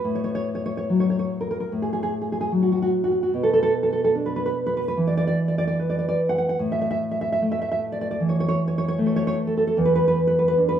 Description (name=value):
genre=romantic piece for solo classical guitar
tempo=74 BPM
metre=4/4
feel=rubato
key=A major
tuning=A4 = 441 Hz
part: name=nylon-string guitar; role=solo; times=0.0-10.8 s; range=E2 to F#5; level=-20 LUFS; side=equal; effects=none
room=moderate large studio reverb, RT60 1.1 s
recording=band playing live in one room, studio reverb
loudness=-20 LUFS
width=side -9 dB against mid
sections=0.0-10.8 A section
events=none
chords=0.1 A6; 3.3 Bm; 5.0 E5; 6.6 A5; 9.8 E5